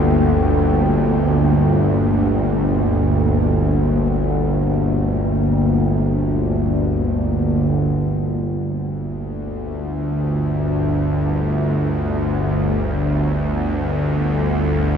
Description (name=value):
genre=dark ambient drone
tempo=free time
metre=none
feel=none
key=G minor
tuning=A4 = 440 Hz
part: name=deep dark ambient pad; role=sustained chords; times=0.0-8.2 s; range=Bb3 to G5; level=-23 LUFS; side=left 2 dB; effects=chorus, built-in reverb
part: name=bowed-like drone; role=drone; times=0.0-15.0 s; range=G1 to D2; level=-17 LUFS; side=equal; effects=built-in reverb
part: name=bronze singing bowl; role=texture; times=0.0-8.2 s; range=none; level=barely audible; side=none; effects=none
room=wet lush hall reverb, RT60 2.8 s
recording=dreamy mix soaked in reverb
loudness=-16 LUFS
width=side -7 dB against mid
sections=0.0-8.2 A section; 8.2-15.0 B section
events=none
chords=0.0 Gmadd9; 8.2 G5